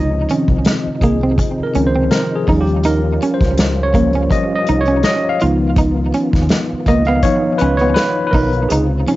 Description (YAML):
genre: R&B, neo-soul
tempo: 82 BPM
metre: 4/4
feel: swing 54% on 16ths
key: Db major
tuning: A4 = 440 Hz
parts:
  - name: electric guitar at the edge of break-up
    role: second line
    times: 0.0-9.2 s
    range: Bb3 to F4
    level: -20 LUFS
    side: right 3 dB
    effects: cassette tape, tape echo
  - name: tine electric piano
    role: accompaniment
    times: 0.0-9.2 s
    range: Eb3 to F5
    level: -17 LUFS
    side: left 1 dB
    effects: medium stereo tremolo, cassette tape
  - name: tonewheel organ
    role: sustained chords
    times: 0.0-9.2 s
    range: C3 to F4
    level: -25 LUFS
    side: left 1 dB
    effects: slow rotary speaker, chorus vibrato, cassette tape
  - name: deep dub fingered electric bass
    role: bass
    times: 0.0-9.0 s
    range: Cb2 to Eb2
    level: -18 LUFS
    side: equal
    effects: none
  - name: unplugged drum kit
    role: drums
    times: 0.3-9.2 s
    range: hi-hat, kick drum, snare drum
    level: -18 LUFS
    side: equal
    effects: none
room: small room ambience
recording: home recording on cassette, nothing above 7.7 kHz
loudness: -13 LUFS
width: side -16 dB against mid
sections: 0.0-9.2 A section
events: tine electric piano solo 0.0-9.2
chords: 0.0 Dbmaj9; 2.5 Eb9; 5.4 Db9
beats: 0.65 1.38 2.11 | 2.85 3.58 4.31 5.04 | 5.77 6.50 7.24 7.97 | 8.70